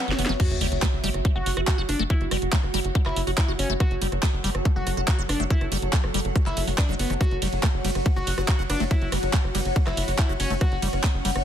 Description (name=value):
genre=psychedelic trance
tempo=141 BPM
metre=4/4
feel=straight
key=F# minor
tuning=A4 = 438 Hz
part: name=overdriven synth lead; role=melody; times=0.0-10.7 s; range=B3 to F#4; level=-33 LUFS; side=left 1 dB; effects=phaser, sidechain pumping, tape echo
part: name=pulsing gated texture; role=sustained chords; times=0.0-11.4 s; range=F#3 to A4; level=-34 LUFS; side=right 4 dB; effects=chorus, built-in reverb, sidechain pumping
part: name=ethereal airy pad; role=texture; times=0.0-11.4 s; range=F#4 to F#5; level=-34 LUFS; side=left 1 dB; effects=ensemble chorus, built-in reverb, phaser, sidechain pumping
part: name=liquid acid bass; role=riff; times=0.1-11.3 s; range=E3 to F#4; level=-32 LUFS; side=moving between left 4 dB and right 4 dB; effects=phaser, auto-pan, sidechain pumping, dub echo
part: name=tight sequencer bass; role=bass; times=0.1-11.4 s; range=F#1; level=-28 LUFS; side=equal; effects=none
part: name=garage drum kit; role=drums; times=0.1-11.4 s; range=crash cymbal, handclaps, hi-hat, ride cymbal, rim click, snare drum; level=-30 LUFS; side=right 1 dB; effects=overdrive
part: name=electronic kick drum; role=drums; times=0.4-11.1 s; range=none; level=-21 LUFS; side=equal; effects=overdrive
part: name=sub drop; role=sound effects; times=0.5-2.1 s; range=none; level=-33 LUFS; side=left 1 dB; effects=none
part: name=resonant blip pluck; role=second line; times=8.7-10.6 s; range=B3 to C#4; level=-42 LUFS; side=left 3 dB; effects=none
room=little or no reverb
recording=dense, heavily limited modern master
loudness=-21 LUFS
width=side -10 dB against mid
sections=0.4-11.4 A section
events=break 0.0-0.4; drum fill 0.0-0.4; drop 0.4-11.4; impact 0.4-2.1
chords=0.4 F#5